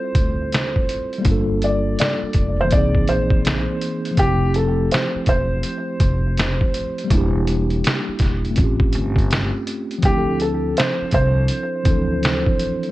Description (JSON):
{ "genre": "lo-fi hip hop", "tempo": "82 BPM", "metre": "4/4", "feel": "swing 64% on 16ths", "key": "D minor", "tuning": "A4 = 440 Hz", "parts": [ { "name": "felt-muted upright piano", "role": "melody", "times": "0.0-12.9 s", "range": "G4 to D5", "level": "-23 LUFS", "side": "right 1 dB", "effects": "tape echo" }, { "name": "mellow tine electric piano", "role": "accompaniment", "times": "0.0-12.9 s", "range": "E3 to A4", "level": "-24 LUFS", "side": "equal", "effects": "medium stereo tremolo, cassette tape" }, { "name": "trip hop sampler-style drum kit", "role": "drums", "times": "0.1-12.9 s", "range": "hi-hat, kick drum, snare drum", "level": "-20 LUFS", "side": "equal", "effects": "vintage 12-bit sampler grit" }, { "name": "upright bass", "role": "bass", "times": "0.2-12.4 s", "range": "E1 to D2", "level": "-22 LUFS", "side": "equal", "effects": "none" } ], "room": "little or no reverb", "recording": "cassette tape", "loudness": "-17 LUFS", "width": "side -17 dB against mid", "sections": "0.0-12.9 A section", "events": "none", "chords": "0.0 Dm11; 1.3 Gm7; 2.7 C7alt; 4.2 Fmaj7; 7.1 Em7b5; 8.6 A7alt; 10.0 Dm9" }